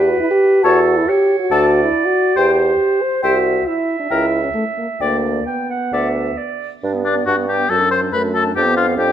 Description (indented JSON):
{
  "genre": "quick classical-period movement for wind quintet",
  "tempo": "136 BPM",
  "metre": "4/4",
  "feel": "uneven beats, rubato",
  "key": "G major",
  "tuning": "A4 = 440 Hz",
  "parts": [
    { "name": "clear clarinet", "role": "accompaniment", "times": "0.0-9.1 s", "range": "B3 to G5", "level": "-22 LUFS", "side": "right 6 dB", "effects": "none" },
    { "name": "mellow French horn", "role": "accompaniment", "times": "0.0-9.1 s", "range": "F#3 to C5", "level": "-17 LUFS", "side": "equal", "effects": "none" },
    { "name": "mellow bassoon", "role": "bass", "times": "0.0-9.1 s", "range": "C2 to G2", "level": "-21 LUFS", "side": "right 2 dB", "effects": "none" },
    { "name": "silver concert flute", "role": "melody", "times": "0.6-9.1 s", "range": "D5 to C6", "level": "-25 LUFS", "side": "left 8 dB", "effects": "none" },
    { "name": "breathy oboe", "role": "second line", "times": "0.6-9.1 s", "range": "D4 to D5", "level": "-19 LUFS", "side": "left 4 dB", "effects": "none" }
  ],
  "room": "moderate recital hall reverb, RT60 1.5 s",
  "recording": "none",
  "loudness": "-14 LUFS",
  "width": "side -10 dB against mid",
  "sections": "0.0-6.8 A section; 6.8-9.1 B section",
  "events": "none",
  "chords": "0.0 Em; 0.6 A/E; 1.5 D5; 2.4 C/E; 3.2 C; 4.1 C#dim; 5.0 G/D; 5.9 D; 6.8 G; 7.7 D/F#; 8.6 G7/F",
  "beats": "0.21 0.64 1.08 | 1.51 1.94 2.37 2.80 | 3.23 3.67 4.11 4.55 | 5.00 5.47 5.93 6.38 | 6.83 7.27 7.70 8.13 | 8.56 8.99"
}